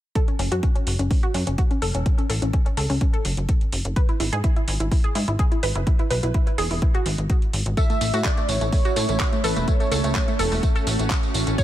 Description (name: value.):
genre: progressive house.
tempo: 126 BPM.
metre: 4/4.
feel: straight.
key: F# minor.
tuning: A4 = 440 Hz.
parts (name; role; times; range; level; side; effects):
analog pluck; arpeggios; 0.2-11.6 s; A3 to C#5; -28 LUFS; equal; chorus, sidechain pumping, digital delay.
electronic kick drum; drums; 0.2-11.6 s; none; -21 LUFS; equal; none.
pop drum kit; drums; 0.2-11.6 s; handclaps, hi-hat, tambourine; -29 LUFS; right 1 dB; sidechain pumping on hats, sidechain pumping on perc.
plucky analog bass; bass; 0.4-11.6 s; E1 to A2; -24 LUFS; equal; sidechain pumping.
wide unison lead; melody; 7.8-11.6 s; A4 to E5; -27 LUFS; right 1 dB; sidechain pumping, tape echo.
shimmering ambient pad; sustained chords; 8.5-11.6 s; C#3 to G#4; -29 LUFS; right 3 dB; chorus, built-in reverb, sidechain pumping.
room: little or no reverb.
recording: none.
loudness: -19 LUFS.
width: side -13 dB against mid.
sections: 0.2-11.6 A section.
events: filter sweep on synth arpeggio sound 0.2-11.6.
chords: 0.2 F#m; 4.0 Eadd9; 7.8 A.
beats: | 0.15 0.63 1.11 1.58 | 2.06 2.54 3.01 3.49 | 3.96 4.44 4.92 5.39 | 5.87 6.34 6.82 7.30 | 7.77 8.25 8.72 9.20 | 9.68 10.15 10.63 11.11 | 11.58.